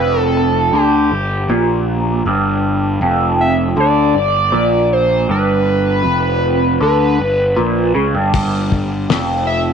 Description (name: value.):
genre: psychedelic rock.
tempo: 79 BPM.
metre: 4/4.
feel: straight.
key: unclear.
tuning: A4 = 438 Hz.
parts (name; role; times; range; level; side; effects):
overdriven synth lead; melody; 0.0-9.6 s; G4 to E5; -17 LUFS; equal; phaser, slapback echo.
electric guitar through a small old amp; riff; 0.0-9.7 s; F2 to D3; -16 LUFS; right 1 dB; phaser.
fuzz picked electric bass; bass; 0.0-9.7 s; F1 to D2; -19 LUFS; left 1 dB; overdrive.
cloth-damped thuddy drum kit; drums; 8.3-9.3 s; hi-hat, kick drum, snare drum; -20 LUFS; left 4 dB; none.
room: light reverb, small room ambience.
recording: 1960s-style stereo, nothing above 10.9 kHz.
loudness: -13 LUFS.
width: side -7 dB against mid.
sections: 0.0-9.7 A section.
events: none.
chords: 0.0 G5.